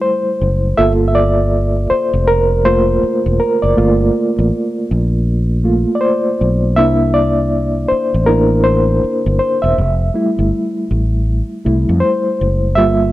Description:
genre	R&B, neo-soul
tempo	80 BPM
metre	4/4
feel	swing 60% on 16ths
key	G dorian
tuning	A4 = 440 Hz
part	bright reed electric piano	accompaniment	0.0-13.1 s	G3 to E5	-14 LUFS	equal	fast tremolo
part	fretless electric bass	bass	0.4-13.1 s	E1 to F2	-15 LUFS	equal	none
room	light reverb, digital ambience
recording	dry, close 1970s-style studio recording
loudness	-12 LUFS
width	side -15 dB against mid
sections	0.0-13.1 A section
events	reed electric piano solo 0.0-13.1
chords	0.0 Fmaj9 (rootless); 0.8 Gm7; 6.8 C9; 9.8 Fmaj9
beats	0.01 | 0.77 1.51 2.27 3.02 | 3.77 4.51 5.26 6.01 | 6.76 7.51 8.27 9.02 | 9.77 10.52 11.27 12.02 | 12.77

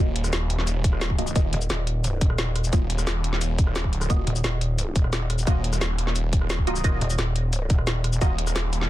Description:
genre	dark technical drum and bass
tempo	175 BPM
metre	4/4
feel	straight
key	Eb minor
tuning	A4 = 440 Hz
part	filtered dub chord stab	stabs	0.0-8.3 s	Bb3 to Eb5	-31 LUFS	right 1 dB	phaser, analog chorus, dub echo
part	snarling distorted saw bass	bass	0.0-8.9 s	Eb1	-25 LUFS	equal	distortion, overdrive, sidechain pumping
part	drum and bass drum kit	drums	0.2-8.9 s	cabasa, hi-hat, rim click, snare drum	-29 LUFS	equal	none
part	electronic kick drum	drums	0.8-8.3 s	none	-22 LUFS	equal	none
part	pulsing pluck wobble bass	bass	1.5-8.2 s	Eb1	-24 LUFS	equal	chorus
part	noise sweep	sound effects	8.8-8.9 s	none	barely audible	none	none
room	digital ambience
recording	dense, heavily limited modern master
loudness	-21 LUFS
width	side -15 dB against mid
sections	0.0-8.9 A section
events	none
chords	0.0 Ebmadd9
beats	0.33 0.67 1.01 | 1.36 1.70 2.04 2.38 | 2.73 3.07 3.41 3.76 | 4.10 4.44 4.79 5.13 | 5.47 5.81 6.16 6.50 | 6.84 7.18 7.53 7.87 | 8.21 8.56

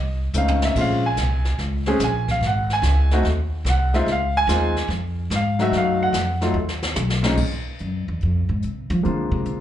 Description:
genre	jazz piano trio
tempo	145 BPM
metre	4/4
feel	swing 67% on 8ths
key	unclear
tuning	A4 = 441 Hz
part	warm grand piano	melody	0.0-9.6 s	Bb2 to Ab5	-22 LUFS	equal	slapback echo
part	upright bass	bass	0.0-9.6 s	Ab1 to F3	-22 LUFS	equal	none
part	jazz brush drum kit	drums	0.3-9.6 s	brushed snare drum, crash cymbal, hi-hat, kick drum, snare drum, toms	-29 LUFS	equal	none
room	small room ambience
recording	live gig heard through the venue's PA, club reverb, nothing above 10.9 kHz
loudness	-19 LUFS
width	side -11 dB against mid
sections	0.0-7.4 A section; 7.4-9.6 A section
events	grand piano solo 0.0-7.4; drum fill 0.4-0.8, 6.6-7.4; upright bass solo 7.4-9.6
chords	0.0 F7b13/C; 0.8 Bbm9; 2.4 Ab7; 4.1 Db; 5.7 B7#11; 7.4 Eaug; 9.0 Bb7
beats	0.35 | 0.77 1.18 1.59 2.01 | 2.42 2.83 3.25 3.66 | 4.08 4.49 4.90 5.32 | 5.73 6.14 6.56 6.97 | 7.38 7.80 8.21 8.63 | 9.04 9.46

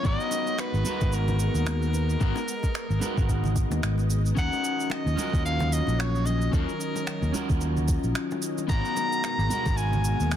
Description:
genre	sunset chillout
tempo	111 BPM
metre	4/4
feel	swing 57% on 16ths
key	unclear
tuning	A4 = 440 Hz
part	breathy soprano saxophone	melody	0.0-10.4 s	Bb4 to Bb5	-32 LUFS	equal	ping-pong delay
part	electric guitar at the edge of break-up	accompaniment	0.0-10.4 s	Cb4 to Bb4	-31 LUFS	moving between left 9 dB and right 3 dB	auto-pan, tape echo
part	soft string machine	sustained chords	0.2-10.4 s	Cb3 to Eb5	-36 LUFS	equal	ensemble chorus, vintage 12-bit sampler grit
part	fingered electric bass	bass	0.0-10.4 s	Ab1 to Eb2	-26 LUFS	equal	none
part	electronic kick drum	drums	0.0-9.8 s	none	-26 LUFS	equal	overdrive
part	electronic shaker and finger snaps	drums	0.0-10.4 s	none	-36 LUFS	right 2 dB	overdrive, soft clipping on snare
part	bongos and congas	percussion	0.3-10.4 s	none	-37 LUFS	right 2 dB	none
room	little or no reverb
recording	dense, heavily limited modern master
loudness	-24 LUFS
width	side -10 dB against mid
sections	0.0-10.4 A section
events	none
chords	0.0 Abm9; 4.4 Ebm9; 8.7 Abm9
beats	| 0.05 0.59 1.13 1.67 | 2.21 2.75 3.29 3.83 | 4.37 4.91 5.45 5.99 | 6.53 7.07 7.61 8.15 | 8.70 9.23 9.78 10.32

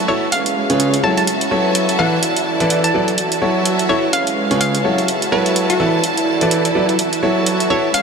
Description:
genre	piano house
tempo	126 BPM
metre	4/4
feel	swing 58% on 16ths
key	F# minor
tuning	A4 = 440 Hz
part	dark studio violin section	sustained chords	0.0-8.0 s	C#4 to A5	-22 LUFS	right 2 dB	none
part	bright concert grand piano	riff	0.0-7.9 s	C#3 to E5	-18 LUFS	right 1 dB	diffuse ambient delay
part	warm studio string section	texture	0.0-8.0 s	G#3 to E#5	-23 LUFS	equal	none
part	hollow square pluck	melody	0.1-8.0 s	F#4 to A5	-21 LUFS	equal	chorus, cassette tape, diffuse ambient delay
part	electronic hi-hat	drums	0.3-8.0 s	none	-22 LUFS	right 2 dB	none
room	wet cathedral reverb, RT60 6.5 s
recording	dreamy mix soaked in reverb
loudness	-14 LUFS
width	side -5 dB against mid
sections	0.0-8.0 A section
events	none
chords	0.3 C#7; 1.0 F#m7; 2.0 E7sus4; 3.2 F#m7; 4.1 C#7; 4.8 F#m7; 5.8 E7sus4; 7.0 F#m7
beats	0.32 0.80 | 1.27 1.75 2.23 2.70 | 3.18 3.65 4.13 4.61 | 5.08 5.56 6.04 6.51 | 6.99 7.46 7.94

